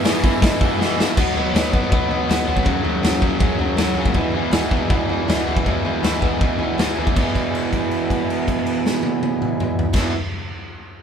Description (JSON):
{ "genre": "garage rock duo or trio", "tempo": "160 BPM", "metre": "4/4", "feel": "straight", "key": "E lydian", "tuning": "A4 = 440 Hz", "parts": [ { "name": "combo organ", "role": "sustained chords", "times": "0.0-10.1 s", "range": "E4 to E5", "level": "-30 LUFS", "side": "equal", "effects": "none" }, { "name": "raw garage guitar", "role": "riff", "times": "0.0-10.1 s", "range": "E2 to B3", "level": "-20 LUFS", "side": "right 1 dB", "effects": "overdrive" }, { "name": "raw garage drum kit", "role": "drums", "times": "0.0-10.0 s", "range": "crash cymbal, hi-hat, kick drum, snare drum, toms", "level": "-20 LUFS", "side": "equal", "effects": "none" } ], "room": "light reverb", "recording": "band playing live in one room", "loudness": "-17 LUFS", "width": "side -7 dB against mid", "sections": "0.0-1.2 A section; 1.2-7.2 B section; 7.2-10.2 C section", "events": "drum fill 0.8-1.2; held note 7.2-9.9", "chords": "0.0 E; 1.2 B; 2.7 F#; 4.2 E" }